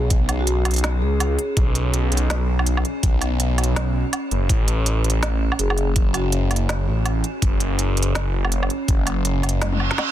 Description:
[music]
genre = half-time drum and bass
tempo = 164 BPM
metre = 4/4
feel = swing 60% on 16ths, half-time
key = unclear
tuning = A4 = 440 Hz
[part]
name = phased detuned saw bass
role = bass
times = 0.0-9.9 s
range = F#1 to C#2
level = -20 LUFS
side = equal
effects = phaser
[part]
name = impact and reverse cymbal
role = sound effects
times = 0.0-0.1, 9.7-10.1 s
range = none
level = -28 LUFS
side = right 6 dB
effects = none
[part]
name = metallic inharmonic drone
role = texture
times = 0.0-10.1 s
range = C#4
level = -30 LUFS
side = right 2 dB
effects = chorus, built-in reverb
[part]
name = electronic kick drum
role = drums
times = 0.1-9.0 s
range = none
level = -19 LUFS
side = equal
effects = overdrive
[part]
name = organic electronic drum kit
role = drums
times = 0.1-10.1 s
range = hi-hat, snare drum, toms, woodblock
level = -27 LUFS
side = right 1 dB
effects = none
[part]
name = vibraphone with soft mallets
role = melody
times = 0.4-1.5, 5.6-6.4 s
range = C#4 to G#4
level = -30 LUFS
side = left 2 dB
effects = dub echo
[sound]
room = little or no reverb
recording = dense, heavily limited modern master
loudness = -18 LUFS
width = side -12 dB against mid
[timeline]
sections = 0.0-10.1 A section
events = kick drops out 9.6-10.1; drum fill 9.6-10.1; reverse cymbal 9.7-10.1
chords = 0.0 C#5; 1.6 B5; 4.5 A6; 7.4 F#5

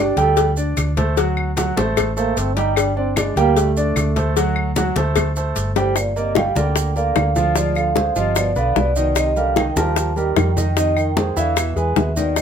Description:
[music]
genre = Afro-Cuban jazz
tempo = 150 BPM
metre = 4/4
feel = straight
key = G minor from 6.0 s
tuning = A4 = 437 Hz
[part]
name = trombone with bucket mute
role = second line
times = 0.0-12.4 s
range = Ab2 to A4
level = -25 LUFS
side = right 4 dB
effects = none
[part]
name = warm concert grand piano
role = accompaniment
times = 0.0-12.4 s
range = Eb3 to G5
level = -22 LUFS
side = right 1 dB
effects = none
[part]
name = hollow-body short-scale fingered electric bass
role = bass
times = 0.0-12.4 s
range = G1 to F2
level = -21 LUFS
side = equal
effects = none
[part]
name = congas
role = percussion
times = 0.2-12.4 s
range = none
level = -25 LUFS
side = left 2 dB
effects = none
[part]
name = cowbell and bongos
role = percussion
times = 0.2-12.4 s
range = none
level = -22 LUFS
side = left 9 dB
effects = none
[part]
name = maracas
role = percussion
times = 0.2-12.4 s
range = none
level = -31 LUFS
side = right 4 dB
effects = none
[part]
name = claves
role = percussion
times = 0.8-12.4 s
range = none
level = -29 LUFS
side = left 5 dB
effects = none
[part]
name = vibraphone with medium mallets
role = melody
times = 5.8-12.4 s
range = C5 to A5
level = -22 LUFS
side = right 3 dB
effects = none
[sound]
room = light reverb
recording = minimal, uncompressed stereo recording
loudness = -16 LUFS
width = side -7 dB against mid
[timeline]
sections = 0.0-6.0 A section; 6.0-12.4 B section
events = trombone solo 0.0-6.0; drum fill 5.8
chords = 0.0 Gsus2; 1.2 D7; 2.8 Gsus2; 4.4 D7; 6.0 Gm7; 7.6 Dm7b5; 8.4 G7; 9.2 Cm7; 10.8 Fm9; 11.6 E

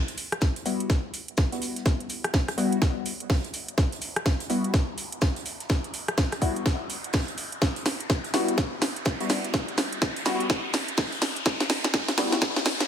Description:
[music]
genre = bass house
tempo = 125 BPM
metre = 4/4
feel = swing 61% on 16ths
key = E minor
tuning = A4 = 441 Hz
[part]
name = riser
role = sound effects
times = 0.0-12.9 s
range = none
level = -36 LUFS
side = equal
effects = none
[part]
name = house drum kit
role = drums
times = 0.1-12.9 s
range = hi-hat, rim click, snare drum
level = -28 LUFS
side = right 1 dB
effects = small room ambience
[part]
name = loose indie drum kit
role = drums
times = 0.1-12.9 s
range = hi-hat, shaker, snare drum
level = -40 LUFS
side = equal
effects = sidechain pumping on hats, high-pass filter on hats, small room ambience, high-pass filter on snare, sidechain pumping on perc, high-pass filter on perc, high-pass filter on room
[part]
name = electronic kick drum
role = drums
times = 0.4-12.5 s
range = none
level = -27 LUFS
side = equal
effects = small room ambience
[part]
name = band-passed chord stab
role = stabs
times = 0.7-12.4 s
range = G3 to F#4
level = -30 LUFS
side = left 3 dB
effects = phaser, sidechain pumping, ping-pong delay
[sound]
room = light reverb, studio reverb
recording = high-pass filter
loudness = -24 LUFS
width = side -8 dB against mid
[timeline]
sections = 0.0-12.9 A section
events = build-up 0.0-12.9; drum fill 0.0-12.9; riser 0.0-12.9; filter sweep on synth stab 0.0-12.9; filter sweep 0.0-12.9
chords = 0.0 Emadd9

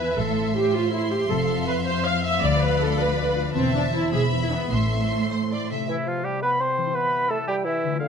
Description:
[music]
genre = classical, dramatic, fast romantic movement for symphony orchestra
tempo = 100-115 BPM (dotted quarters)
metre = 6/8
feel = rubato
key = A minor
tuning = A4 = 440 Hz
[part]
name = rich symphonic violin section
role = melody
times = 0.0-5.7 s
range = G#5 to C6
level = -33 LUFS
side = equal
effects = none
[part]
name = warm symphonic violin section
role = second line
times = 0.0-5.9 s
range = C5 to F5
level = -31 LUFS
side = left 2 dB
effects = none
[part]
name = warm symphonic viola section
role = accompaniment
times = 0.0-5.7 s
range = A3 to F5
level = -24 LUFS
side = right 2 dB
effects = none
[part]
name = concert harp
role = arpeggios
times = 0.0-8.1 s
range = A2 to F5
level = -29 LUFS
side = left 10 dB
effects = none
[part]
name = dark symphonic cello section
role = bass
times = 0.0-5.7 s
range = D2 to A2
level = -29 LUFS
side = right 3 dB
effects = none
[part]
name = dark symphonic double bass section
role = bass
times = 0.2-5.1 s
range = E1 to D2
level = -27 LUFS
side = right 3 dB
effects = none
[part]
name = clear oboe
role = second line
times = 5.9-8.1 s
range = E4 to F5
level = -30 LUFS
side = right 2 dB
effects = none
[part]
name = concert flute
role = second line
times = 5.9-8.1 s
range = E5 to C6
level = -25 LUFS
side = equal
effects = none
[part]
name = dark bassoon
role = accompaniment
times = 5.9-8.1 s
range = D3 to C4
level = -27 LUFS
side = right 1 dB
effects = none
[sound]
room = light reverb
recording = close, detailed microphones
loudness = -21 LUFS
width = side -6 dB against mid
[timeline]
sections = 0.0-5.9 A section; 5.9-8.1 B section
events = none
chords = 0.2 Am; 1.3 Fmaj7; 2.4 Bdim/D; 3.5 Am/E; 4.1 E5; 4.7 Am; 5.9 C; 7.0 C/E

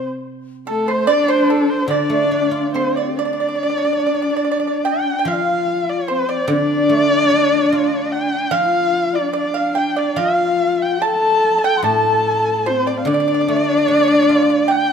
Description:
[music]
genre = chinese traditional, Chinese chamber ensemble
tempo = 73 BPM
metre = 2/4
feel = rubato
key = D yu mode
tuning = A4 = 440 Hz
[part]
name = dark erhu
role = melody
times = 0.0-14.9 s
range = A4 to A5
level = -20 LUFS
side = equal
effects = none
[part]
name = dark horsehead fiddle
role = second line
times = 0.0-14.9 s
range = A3 to A4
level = -20 LUFS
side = left 2 dB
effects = none
[part]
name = mellow xiao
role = second line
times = 0.0-14.9 s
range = D4 to C6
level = -23 LUFS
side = left 4 dB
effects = none
[part]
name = pipa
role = second line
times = 0.0-14.9 s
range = A4 to A5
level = -22 LUFS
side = right 7 dB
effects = none
[part]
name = guzheng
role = accompaniment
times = 0.0-14.9 s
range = A2 to A4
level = -22 LUFS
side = equal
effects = none
[sound]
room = wet recital hall reverb, RT60 1.8 s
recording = none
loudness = -15 LUFS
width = side -7 dB against mid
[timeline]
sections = 0.0-3.6 A section; 3.6-14.9 B section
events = none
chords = none

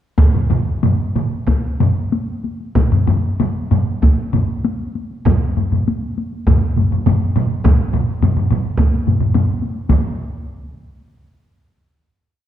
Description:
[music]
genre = japanese traditional, taiko drum ensemble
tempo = 92-118 BPM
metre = 4/4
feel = straight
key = none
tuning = none
[part]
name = solo taiko drums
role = percussion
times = 0.2-10.1 s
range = none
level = -23 LUFS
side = left 4 dB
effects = none
[part]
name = taiko ensemble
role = percussion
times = 0.2-10.4 s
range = none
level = -19 LUFS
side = left 3 dB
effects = none
[part]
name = taiko ensemble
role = percussion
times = 0.2-10.4 s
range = none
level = -21 LUFS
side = right 5 dB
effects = none
[part]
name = taiko ensemble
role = percussion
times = 0.2-10.1 s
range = none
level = -18 LUFS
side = right 1 dB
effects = none
[sound]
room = wet recital hall reverb, RT60 1.8 s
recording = dark, warm production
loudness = -15 LUFS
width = side -10 dB against mid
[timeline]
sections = 0.2-9.9 A section; 9.9-12.0 final hit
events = speeding up 0.2-12.0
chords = none

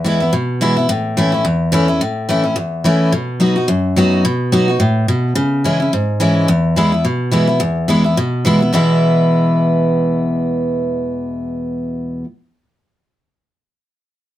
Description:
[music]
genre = bluegrass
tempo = 214 BPM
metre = 4/4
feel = swing 55% on 8ths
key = E major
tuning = A4 = 441 Hz
[part]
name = picked steel-string acoustic guitar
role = solo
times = 0.0-12.2 s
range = E2 to F#4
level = -13 LUFS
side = equal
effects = none
[sound]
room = moderate studio ambience, RT60 0.5 s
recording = none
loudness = -13 LUFS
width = side -13 dB against mid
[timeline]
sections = 0.0-7.6 A section; 7.6-8.7 B section; 8.7-11.0 C section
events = none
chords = 0.0 E; 0.9 A; 3.1 B; 5.4 C#m; 6.5 E

